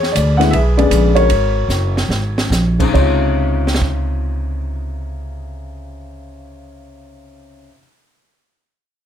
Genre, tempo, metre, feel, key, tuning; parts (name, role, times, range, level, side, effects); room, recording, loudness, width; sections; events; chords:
jazz piano trio; 138-161 BPM; 4/4; swing 66% on 8ths; Db major; A4 = 439 Hz
warm concert grand piano; melody; 0.0-7.8 s; C3 to Gb5; -18 LUFS; left 3 dB
upright bass; bass; 0.0-7.7 s; Gb1 to E2; -17 LUFS; right 1 dB
open jazz drum kit; drums; 0.0-3.9 s; crash cymbal, hi-hat, kick drum, ride cymbal, snare drum; -21 LUFS; right 2 dB
little or no reverb; close, detailed microphones; -13 LUFS; side -9 dB against mid
0.0-2.9 A section; 2.9-6.4 B section
slowing down 0.0-2.9; drum fill 1.7-2.5
0.0 E7; 1.3 Ab9sus4; 2.9 Dbmaj9